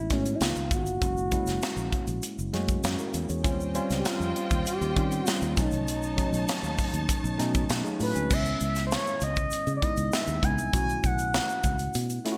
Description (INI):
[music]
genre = polished 1980s jazz-funk pop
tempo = 99 BPM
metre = 4/4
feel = straight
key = unclear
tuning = A4 = 436 Hz
[part]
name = expressive synth lead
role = melody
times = 0.0-12.0 s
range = C#4 to G#5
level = -34 LUFS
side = equal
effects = chorus
[part]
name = mellow tine electric piano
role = accompaniment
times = 0.0-12.4 s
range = F#3 to C#5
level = -35 LUFS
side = equal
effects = subtle chorus
[part]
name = fingered electric bass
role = bass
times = 0.0-12.2 s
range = F#1 to D#3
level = -34 LUFS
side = equal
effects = none
[part]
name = crisp fusion drum kit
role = drums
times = 0.1-12.4 s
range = crash cymbal, hi-hat, kick drum, snare drum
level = -32 LUFS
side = equal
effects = gated reverb
[part]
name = egg shaker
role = percussion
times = 0.3-12.2 s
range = none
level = -45 LUFS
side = equal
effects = none
[part]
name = rich symphonic string section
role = sustained chords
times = 3.4-8.3 s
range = D#4 to A5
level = -40 LUFS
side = equal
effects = none
[sound]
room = moderate plate reverb, RT60 1.4 s, small room ambience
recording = bright 1980s-style digital production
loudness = -28 LUFS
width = mono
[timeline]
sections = 0.0-8.3 A section; 8.3-12.4 B section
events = none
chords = 0.4 C#13; 1.0 F#9; 3.4 D#13; 5.6 B9; 8.3 C#m9; 10.7 B9sus4